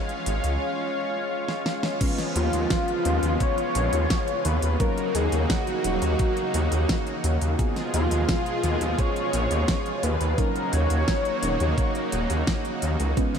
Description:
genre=synthwave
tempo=86 BPM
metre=4/4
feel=straight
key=Eb minor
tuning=A4 = 440 Hz
part: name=lush unison pad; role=sustained chords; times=0.0-13.4 s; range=Cb3 to F5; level=-29 LUFS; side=equal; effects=chorus
part: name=pop drum kit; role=drums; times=0.1-13.4 s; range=crash cymbal, hi-hat, snare drum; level=-32 LUFS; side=equal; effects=none
part: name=wide detuned saw bass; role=bass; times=0.3-13.1 s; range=Eb1 to Eb2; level=-24 LUFS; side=equal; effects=chorus
part: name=mellow FM electric piano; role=stabs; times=2.0-13.4 s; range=Gb3 to Cb5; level=-34 LUFS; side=left 2 dB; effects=chorus, phaser, ping-pong delay
part: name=electronic kick drum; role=drums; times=2.0-13.3 s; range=none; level=-26 LUFS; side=equal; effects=none
part: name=wide unison lead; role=melody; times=2.4-12.1 s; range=F4 to Db5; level=-28 LUFS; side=left 1 dB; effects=lush chorus, analog delay
part: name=warbly dusty pluck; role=arpeggios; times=13.2-13.4 s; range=Db3 to Db4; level=-29 LUFS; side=right 8 dB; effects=chorus
room=moderate huge ambient reverb, RT60 8.6 s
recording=dreamy mix soaked in reverb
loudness=-22 LUFS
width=side -7 dB against mid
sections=0.0-2.0 A section; 2.0-13.4 B section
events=drum fill 1.5-2.0; band accent 1.8-2.2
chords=0.0 Db; 2.0 Db7/Eb; 4.8 Ebm7; 7.6 Fdim/Eb; 10.4 Ebm7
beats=0.61 1.31 | 2.01 2.71 3.40 4.10 | 4.80 5.50 6.19 6.89 | 7.59 8.29 8.98 9.68 | 10.38 11.08 11.78 12.47 | 13.17

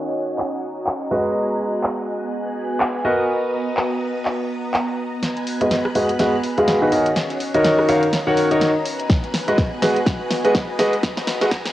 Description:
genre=piano house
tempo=124 BPM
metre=4/4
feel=swing 58% on 16ths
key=G# minor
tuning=A4 = 439 Hz
part: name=string machine, violins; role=sustained chords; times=0.0-11.7 s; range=B3 to F#6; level=-30 LUFS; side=equal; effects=ensemble chorus, sidechain pumping, cassette tape
part: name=clear concert grand piano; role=riff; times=0.0-11.5 s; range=D#3 to F#5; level=-20 LUFS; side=equal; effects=sidechain pumping, low-pass filter, cassette tape, analog delay
part: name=warbly tape-like pad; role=texture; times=0.0-11.7 s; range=B3 to A#5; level=-27 LUFS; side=right 1 dB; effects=chorus, built-in reverb, sidechain pumping, cassette tape
part: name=house drum kit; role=drums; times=0.4-11.7 s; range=handclaps, hi-hat, rim click, snare drum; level=-25 LUFS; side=equal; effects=low-pass filter on hats, small room ambience, cassette tape, low-pass filter on snare, low-pass filter on cymbals
part: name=jazz brush drum kit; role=drums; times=5.2-11.7 s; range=ride cymbal, snare drum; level=-37 LUFS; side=left 1 dB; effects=none
part: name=electronic kick drum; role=drums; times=9.1-11.6 s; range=none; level=-20 LUFS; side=equal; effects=small room ambience, cassette tape
room=wet spring reverb, RT60 1.2 s, small room reverb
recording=home recording on cassette, high-pass filter, low-pass filter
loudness=-18 LUFS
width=side -14 dB against mid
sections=0.0-5.2 A section; 5.2-11.7 B section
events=filter sweep on drum 0.0-5.2; filter sweep on grand piano 0.0-5.2, 5.2-11.7; filter sweep 0.0-5.2; build-up 5.2-11.7; drum fill 5.2-11.7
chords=0.0 D#m7; 1.1 G#m7; 3.0 Bmaj7; 5.2 G#m7; 6.9 D#m7; 8.9 G#m7; 10.8 Bmaj7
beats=0.39 0.87 | 1.35 1.84 2.32 2.81 | 3.29 3.77 4.26 4.74 | 5.22 5.71 6.19 6.68 | 7.16 7.64 8.13 8.61 | 9.10 9.58 10.06 10.55 | 11.03 11.52

